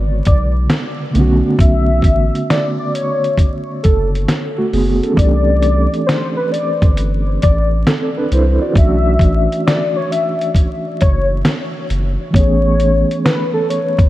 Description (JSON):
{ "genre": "lo-fi hip hop", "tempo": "67 BPM", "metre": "4/4", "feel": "swing 66% on 16ths", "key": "B dorian", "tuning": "A4 = 440 Hz", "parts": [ { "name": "mellow reed electric piano", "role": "accompaniment", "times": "0.0-14.1 s", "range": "C#3 to D5", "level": "-19 LUFS", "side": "right 2 dB", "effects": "fast tremolo, low-pass filter" }, { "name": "soft dub sub bass", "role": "bass", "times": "0.0-14.1 s", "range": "F#1 to C2", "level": "-16 LUFS", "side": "equal", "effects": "none" }, { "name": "warm velvety synth lead", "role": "melody", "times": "0.3-14.1 s", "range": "A4 to E5", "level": "-20 LUFS", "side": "left 2 dB", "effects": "chorus, low-pass filter, tape echo" }, { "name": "dusty soul sampler-style drum kit", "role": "drums", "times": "0.3-14.1 s", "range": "hi-hat, kick drum, snare drum", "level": "-16 LUFS", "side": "equal", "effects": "none" } ], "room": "light reverb", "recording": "vinyl crackle", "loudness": "-12 LUFS", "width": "side -15 dB against mid", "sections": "0.0-5.2 A section; 5.2-14.1 B section", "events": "none", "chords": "0.0 Bm69; 1.1 Bm9; 5.2 C69; 8.8 Bm11 (rootless); 12.3 Amaj7", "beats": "0.70 | 1.59 2.49 3.38 4.28 | 5.17 6.07 6.97 7.86 | 8.76 9.65 10.55 11.44 | 12.34 13.23" }